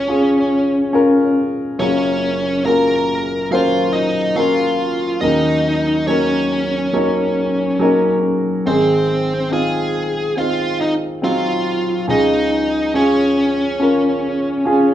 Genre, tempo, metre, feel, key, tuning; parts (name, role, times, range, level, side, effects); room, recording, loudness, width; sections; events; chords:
pop; 70 BPM; 4/4; straight; Db major; A4 = 440 Hz
smooth overdriven lead guitar; melody; 0.0-14.9 s; C4 to Bb5; -19 LUFS; equal
dark grand piano; accompaniment; 0.0-14.9 s; Gb1 to Db5; -16 LUFS; equal
wet large studio reverb, RT60 0.8 s; band playing live in one room; -14 LUFS; side -11 dB against mid
0.0-14.9 A section
0.0 Db; 1.8 Gbmaj7; 5.2 Ebm7; 8.7 Ab; 12.1 Db